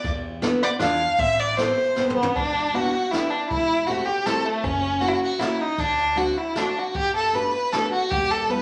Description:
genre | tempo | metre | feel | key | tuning
musette waltz | 156 BPM | 3/4 | rubato | E minor | A4 = 440 Hz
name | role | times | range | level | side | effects
clear violin | melody | 0.0-8.6 s | A3 to F5 | -24 LUFS | equal | none
archtop guitar, miked and amplified | second line | 0.0-2.2 s | A3 to D4 | -34 LUFS | equal | none
upright bass | bass | 0.0-8.6 s | E1 to E2 | -37 LUFS | equal | none
jazz brush drum kit | drums | 0.0-8.6 s | kick drum, ride cymbal, snare drum, toms | -34 LUFS | equal | none
picked steel-string acoustic guitar | accompaniment | 0.4-8.6 s | G3 to A4 | -30 LUFS | equal | none
room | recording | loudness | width
wet large studio reverb, RT60 0.8 s | none | -23 LUFS | mono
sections
0.0-2.4 A section; 2.4-8.6 B section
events
drum fill 2.0-2.4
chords
0.0 E7sus4; 0.8 E7b9; 1.2 Am9; 2.4 Em7; 3.5 C6/E; 4.6 F#7; 5.8 D7; 6.9 Gadd9; 8.1 Em

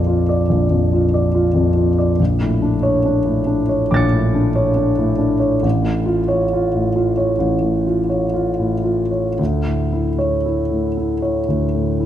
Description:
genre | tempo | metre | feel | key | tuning
classical, impressionist solo piano | 54-72 BPM | 4/4 | rubato | unclear | A4 = 440 Hz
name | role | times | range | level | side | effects
warm concert grand piano | solo | 0.0-12.1 s | A1 to C#7 | -15 LUFS | equal | none
room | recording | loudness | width
moderate scoring stage reverb, RT60 2.1 s | dark, warm production | -15 LUFS | side -11 dB against mid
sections
0.0-12.1 A section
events
none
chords
0.0 Bb; 2.2 D5/Bb; 5.6 Aaug; 9.4 Dsus2

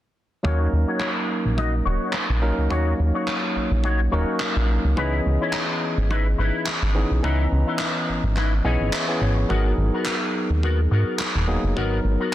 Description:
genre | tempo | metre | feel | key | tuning
nu-disco, nu disco | 106 BPM | 4/4 | swing 55% on 16ths | unclear | A4 = 442 Hz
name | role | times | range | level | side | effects
barky tine electric piano | accompaniment | 0.4-12.3 s | E3 to A#5 | -26 LUFS | equal | sidechain pumping, analog delay
electric guitar with an envelope filter | riff | 0.4-12.3 s | B3 to G#5 | -29 LUFS | left 3 dB | ensemble chorus, low-pass filter, analog delay
chorused synth bass | bass | 0.4-12.2 s | D#1 to G#2 | -21 LUFS | equal | none
kick drum | drums | 0.4-11.9 s | none | -33 LUFS | equal | high-pass filter on kick, small room ambience, high-pass filter on snare, high-pass filter on room
handclaps | drums | 1.0-11.3 s | none | -28 LUFS | equal | low-pass filter on snare, small room ambience, low-pass filter on room
room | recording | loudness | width
studio ambience | dense, heavily limited modern master | -20 LUFS | side -13 dB against mid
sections
0.4-12.3 A section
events
filter sweep on clean electric guitar 0.4-12.3; clean electric guitar fill 8.4-9.5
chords
0.4 D#m7; 5.0 C#m9; 9.5 G#m9

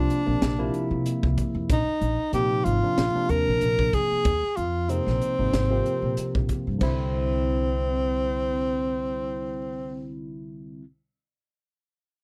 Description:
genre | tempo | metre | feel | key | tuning
electric jazz fusion | 94 BPM | 4/4 | swing 55% on 16ths | C mixolydian | A4 = 438 Hz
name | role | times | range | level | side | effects
clear tenor saxophone | melody | 0.0-10.1 s | C4 to Bb4 | -28 LUFS | equal | none
barky tine electric piano | accompaniment | 0.0-10.8 s | C3 to F4 | -32 LUFS | equal | overdrive, phaser
upright bass | bass | 0.0-10.8 s | Ab1 to C3 | -30 LUFS | equal | none
crisp fusion drum kit | drums | 0.1-7.0 s | crash cymbal, hi-hat, kick drum, snare drum | -30 LUFS | equal | none
room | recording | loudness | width
little or no reverb | none | -25 LUFS | mono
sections
0.0-6.8 A section; 6.8-9.4 B section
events
none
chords
0.0 C9sus4; 1.7 Bbsus4; 6.8 C

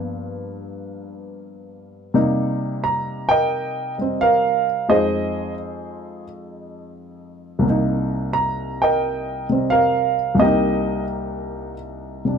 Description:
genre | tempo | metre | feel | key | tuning
solo jazz | 87 BPM | 4/4 | swing 69% on 8ths | C minor | A4 = 440 Hz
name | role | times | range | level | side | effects
dark baby grand piano | solo | 0.0-12.4 s | C2 to Bb5 | -19 LUFS | right 1 dB | none
room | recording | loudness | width
light reverb | none | -18 LUFS | side -7 dB against mid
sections
0.0-2.1 A section; 2.1-12.4 B section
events
grand piano solo 0.0-2.1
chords
0.0 G7#9; 2.1 Cm7; 4.9 Fm7; 7.6 Cm7

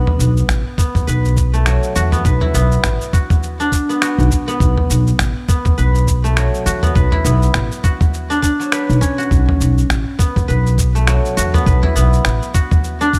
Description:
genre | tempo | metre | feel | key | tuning
organic downtempo | 102 BPM | 4/4 | swing 58% on 16ths | B minor | A4 = 440 Hz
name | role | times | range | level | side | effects
guzheng | arpeggios | 0.0-13.2 s | F#3 to B4 | -22 LUFS | equal | vintage 12-bit sampler grit, delay
upright bass | bass | 0.0-12.4 s | A1 to E2 | -17 LUFS | equal | sidechain pumping
dusty soul sampler-style drum kit | drums | 0.1-13.2 s | finger snaps, shaker, toms | -23 LUFS | equal | small room ambience
electronic kick drum | drums | 0.8-13.2 s | none | -17 LUFS | equal | small room ambience
room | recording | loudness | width
studio reverb | none | -15 LUFS | mono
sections
0.0-13.2 A section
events
none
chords
0.0 Bm7

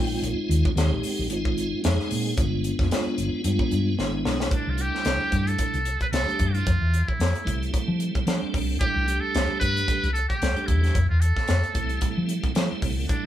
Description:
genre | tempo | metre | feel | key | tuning
electric jazz fusion | 112 BPM | 4/4 | swing 56% on 16ths | C major from 4.5 s | A4 = 440 Hz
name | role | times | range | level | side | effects
tonewheel organ | accompaniment | 0.0-13.3 s | G3 to G5 | -29 LUFS | right 1 dB | slow rotary speaker, overdrive, chorus vibrato
hollow-body short-scale fingered electric bass | bass | 0.0-13.1 s | F1 to F3 | -25 LUFS | left 1 dB | none
crisp fusion drum kit | drums | 0.2-13.2 s | hi-hat, kick drum, snare drum | -27 LUFS | equal | none
trumpet with metal mute | melody | 4.5-13.3 s | D4 to B4 | -27 LUFS | right 1 dB | none
room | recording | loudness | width
moderate studio reverb, RT60 0.5 s | band playing live in one room | -22 LUFS | side -12 dB against mid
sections
0.0-4.5 A section; 4.5-13.3 B section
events
tonewheel organ fill 0.0; drum fill 4.0-4.5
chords
0.0 Bb9sus4; 2.4 G7b9; 4.5 C69; 6.7 Fmaj7; 8.8 C69; 11.0 Fmaj7

